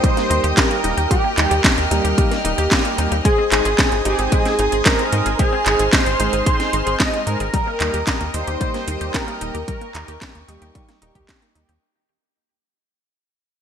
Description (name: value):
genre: italo disco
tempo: 112 BPM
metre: 4/4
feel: straight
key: unclear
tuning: A4 = 440 Hz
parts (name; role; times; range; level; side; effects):
- wide unison lead; melody; 0.0-10.4 s; G4 to Eb5; -22 LUFS; equal; ensemble chorus, ping-pong delay
- rich chamber string section; sustained chords; 0.0-11.8 s; Bb4 to F6; -26 LUFS; right 2 dB; vintage 12-bit sampler grit
- wide unison pluck; arpeggios; 0.0-11.8 s; G3 to Ab4; -28 LUFS; left 1 dB; digital delay
- mellow synth brass; stabs; 0.0-11.7 s; G3 to Ab4; -27 LUFS; right 2 dB; chorus
- electronic kick drum; drums; 0.0-11.4 s; none; -20 LUFS; equal; none
- house drum kit; drums; 0.0-11.8 s; handclaps, hi-hat, snare drum; -21 LUFS; equal; gated reverb
- tight sequencer bass; bass; 0.3-11.8 s; Eb1 to Ab2; -23 LUFS; equal; none
room: moderate lush hall reverb, RT60 2.4 s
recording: bright 1980s-style digital production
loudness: -16 LUFS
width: side -8 dB against mid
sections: 0.0-11.8 A section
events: fade-out 6.1-11.8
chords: 0.0 Eb; 3.3 Ab; 7.5 Eb